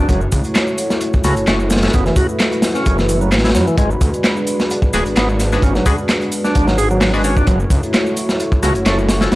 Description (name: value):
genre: breakbeat, breaks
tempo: 130 BPM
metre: 4/4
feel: swing 54% on 16ths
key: F# minor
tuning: A4 = 439 Hz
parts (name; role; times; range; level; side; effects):
- dark analog pad; sustained chords; 0.0-9.4 s; G#3 to C#5; -20 LUFS; equal; chorus, sidechain pumping
- bright tonewheel organ; riff; 0.0-9.4 s; E3 to G#4; -21 LUFS; equal; slow rotary speaker, tape echo
- detuned saw bass; bass; 0.0-9.4 s; D1 to F#2; -18 LUFS; equal; none
- crunchy breakbeat drum kit; drums; 0.1-9.4 s; hi-hat, kick drum, snare drum; -17 LUFS; equal; none
- house drum kit; drums; 0.1-9.4 s; handclaps, hi-hat, shaker; -24 LUFS; equal; none
- band-passed chord stab; stabs; 1.2-1.9, 4.9-9.3 s; C#4 to C#5; -25 LUFS; left 2 dB; phaser, vintage 12-bit sampler grit, tape echo
room: little or no reverb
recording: dry, gritty hardware recording, cassette tape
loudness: -13 LUFS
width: side -18 dB against mid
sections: 0.0-9.4 A section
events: none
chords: 0.1 F#m7; 3.8 G#m7b5; 7.5 F#m7